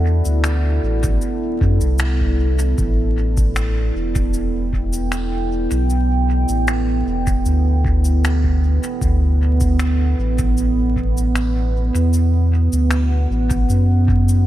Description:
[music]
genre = ambient dub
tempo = 77 BPM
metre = 4/4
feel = straight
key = unclear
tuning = A4 = 440 Hz
[part]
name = deep dark ambient pad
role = sustained chords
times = 0.0-14.5 s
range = B3 to G5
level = -22 LUFS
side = right 3 dB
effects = chorus, built-in reverb
[part]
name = warm sub bass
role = bass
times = 0.0-14.5 s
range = E1 to F#2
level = -17 LUFS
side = equal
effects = none
[part]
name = cabasa and finger snaps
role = drums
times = 0.3-14.4 s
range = none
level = -28 LUFS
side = left 1 dB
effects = dub echo
[part]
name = electronic kick drum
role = drums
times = 1.0-14.2 s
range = none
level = -22 LUFS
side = equal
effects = overdrive
[sound]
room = light reverb, small room reverb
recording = vinyl crackle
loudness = -15 LUFS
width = side -14 dB against mid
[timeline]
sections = 0.0-14.5 A section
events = none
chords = 0.0 D13; 2.8 A9sus4; 9.0 D69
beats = 0.44 1.22 2.00 | 2.78 3.56 4.34 5.12 | 5.90 6.68 7.46 8.24 | 9.02 9.79 10.57 11.35 | 12.13 12.91 13.69

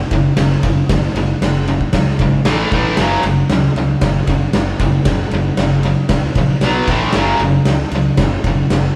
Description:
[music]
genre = garage rock duo or trio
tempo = 115 BPM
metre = 4/4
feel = straight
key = F# minor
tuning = A4 = 442 Hz
[part]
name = biting overdriven guitar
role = riff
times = 0.0-9.0 s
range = F#2 to B3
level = -18 LUFS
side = equal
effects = none
[part]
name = fuzz fingered electric bass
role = bass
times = 0.0-8.9 s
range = F#1 to C#2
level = -23 LUFS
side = equal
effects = overdrive
[part]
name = oversized low-tuned drum kit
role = drums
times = 0.1-8.8 s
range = kick drum, ride cymbal, snare drum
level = -20 LUFS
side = equal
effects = none
[sound]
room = wet stone room reverb, RT60 1.2 s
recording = band playing live in one room, cassette tape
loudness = -15 LUFS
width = mono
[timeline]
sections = 0.0-9.0 A section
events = none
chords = 0.0 F#5; 2.5 A5; 3.0 F#5; 6.6 B5; 6.9 A5; 7.2 F#5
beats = 0.38 | 0.90 1.42 1.94 2.46 | 2.98 3.51 4.03 4.55 | 5.07 5.59 6.11 6.63 | 7.15 7.67 8.19 8.71

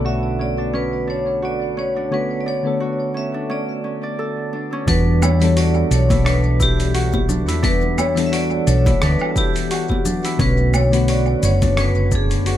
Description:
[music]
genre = sunset chillout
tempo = 87 BPM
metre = 4/4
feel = swing 56% on 16ths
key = E dorian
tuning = A4 = 440 Hz
[part]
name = vibraphone with hard mallets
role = melody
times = 0.0-12.6 s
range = G4 to E5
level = -23 LUFS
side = left 1 dB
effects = tape echo
[part]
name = soft electric-piano-like synth keys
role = accompaniment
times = 0.0-12.6 s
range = D3 to C#5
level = -24 LUFS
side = moving between left 5 dB and right 2 dB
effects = chorus, auto-pan, tape echo
[part]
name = Celtic harp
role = arpeggios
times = 0.0-12.6 s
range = C#4 to D5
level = -27 LUFS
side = right 1 dB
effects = tape echo
[part]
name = hollow-body short-scale fingered electric bass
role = bass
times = 0.0-12.6 s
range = F#1 to E2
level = -18 LUFS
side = equal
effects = none
[part]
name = dusty soul sampler-style drum kit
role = drums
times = 4.9-12.6 s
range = hi-hat, rim click, shaker, woodblock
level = -27 LUFS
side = equal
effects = tape echo
[part]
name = electronic kick drum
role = drums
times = 4.9-12.3 s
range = none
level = -22 LUFS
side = equal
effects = none
[part]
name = congas and bongos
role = percussion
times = 5.2-11.7 s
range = none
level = -29 LUFS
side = left 3 dB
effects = tape echo
[sound]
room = light reverb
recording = echo-heavy mix, low-pass filter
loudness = -16 LUFS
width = side -12 dB against mid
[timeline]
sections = 0.0-4.9 A section; 4.9-12.6 B section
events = none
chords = 0.0 Bm9; 4.9 Em9; 10.4 Bm9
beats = 0.05 0.74 1.43 | 2.12 2.81 3.50 4.19 | 4.88 5.57 6.26 6.95 | 7.64 8.33 9.02 9.71 | 10.39 11.09 11.77 12.46

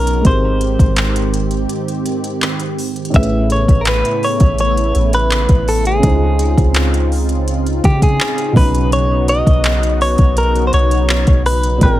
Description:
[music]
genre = contemporary R&B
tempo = 83 BPM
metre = 4/4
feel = straight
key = unclear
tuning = A4 = 440 Hz
[part]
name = direct-recorded clean electric guitar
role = melody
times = 0.0-12.0 s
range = G4 to E5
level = -18 LUFS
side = equal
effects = harmonic tremolo, tape echo
[part]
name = felt-muted upright piano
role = accompaniment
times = 0.0-12.0 s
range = Ab2 to G5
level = -21 LUFS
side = right 1 dB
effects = none
[part]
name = warm analog pad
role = sustained chords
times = 0.0-12.0 s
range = C3 to G5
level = -22 LUFS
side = right 1 dB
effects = chorus, sidechain pumping
[part]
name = soft 808-style bass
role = bass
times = 0.0-12.0 s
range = Ab1 to Db3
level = -16 LUFS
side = equal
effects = none
[part]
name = smooth R&B drum kit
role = drums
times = 0.1-12.0 s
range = handclaps, hi-hat, kick drum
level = -16 LUFS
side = equal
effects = none
[sound]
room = digital ambience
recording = none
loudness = -12 LUFS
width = side -14 dB against mid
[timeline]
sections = 0.0-12.0 A section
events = break 1.7-3.1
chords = 0.2 Abmaj9; 3.1 Amaj9; 6.0 Dbmaj9; 8.6 Badd9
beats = | 0.25 0.97 1.69 2.42 | 3.14 3.86 4.59 5.31 | 6.03 6.75 7.48 8.20 | 8.92 9.65 10.37 11.09 | 11.81

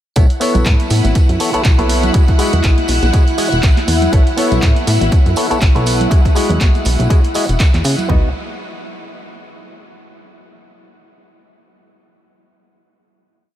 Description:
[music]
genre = filtered disco house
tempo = 121 BPM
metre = 4/4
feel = swing 56% on 16ths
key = B mixolydian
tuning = A4 = 440 Hz
[part]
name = auto-wah clav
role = accompaniment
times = 0.2-8.3 s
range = G#3 to D#5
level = -20 LUFS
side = left 2 dB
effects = phaser, vintage 12-bit sampler grit, sidechain pumping
[part]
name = string machine, full ensemble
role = sustained chords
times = 0.2-8.1 s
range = E4 to F#5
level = -21 LUFS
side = left 1 dB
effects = ensemble chorus, sidechain pumping
[part]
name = plucky analog bass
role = bass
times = 0.2-8.3 s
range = E1 to C#3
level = -16 LUFS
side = equal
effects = sidechain pumping
[part]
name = punchy analog drum machine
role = drums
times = 0.2-8.2 s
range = kick drum, toms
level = -12 LUFS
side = equal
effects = none
[part]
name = punchy analog drum machine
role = drums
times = 0.2-8.1 s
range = handclaps, hi-hat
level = -23 LUFS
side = right 1 dB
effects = sidechain pumping on hats
[part]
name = tambourine and congas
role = percussion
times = 0.2-8.1 s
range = none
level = -26 LUFS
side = right 4 dB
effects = sidechain pumping on perc
[sound]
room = light reverb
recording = none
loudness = -11 LUFS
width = side -12 dB against mid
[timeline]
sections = 0.2-8.1 drop; 8.1-10.1 final chord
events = drop 0.2-8.1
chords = 0.2 B9sus4; 2.1 Emaj9; 4.1 B9sus4; 6.1 Emaj9; 8.1 B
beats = | 0.16 0.66 1.15 1.65 | 2.15 2.64 3.14 3.63 | 4.13 4.62 5.12 5.62 | 6.11 6.61 7.10 7.60 | 8.10

